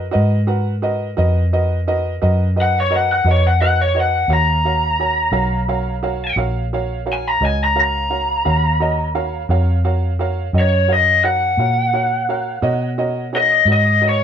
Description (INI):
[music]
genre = blues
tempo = 58 BPM (dotted quarters)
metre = 12/8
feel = straight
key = Eb minor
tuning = A4 = 441 Hz
[part]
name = clear upright piano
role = accompaniment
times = 0.0-14.2 s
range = Gb4 to Ab5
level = -23 LUFS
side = right 3 dB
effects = none
[part]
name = vintage muted fingered electric bass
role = bass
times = 0.0-14.2 s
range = Bb1 to B2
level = -19 LUFS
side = equal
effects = none
[part]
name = lead guitar through a small cranked amp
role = melody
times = 2.6-14.2 s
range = Db5 to Bb5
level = -16 LUFS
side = left 2 dB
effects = overdrive
[sound]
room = moderate small room reverb, RT60 0.5 s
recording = band playing live in one room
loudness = -15 LUFS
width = side -8 dB against mid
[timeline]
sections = 0.0-14.2 A section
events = lead electric guitar solo 0.0-14.2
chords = 0.0 Abm9; 4.3 Ebm9; 12.6 Bmaj7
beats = | 0.13 1.17 2.21 3.25 | 4.29 5.34 6.38 7.42 | 8.46 9.51 10.55 11.59 | 12.63 13.68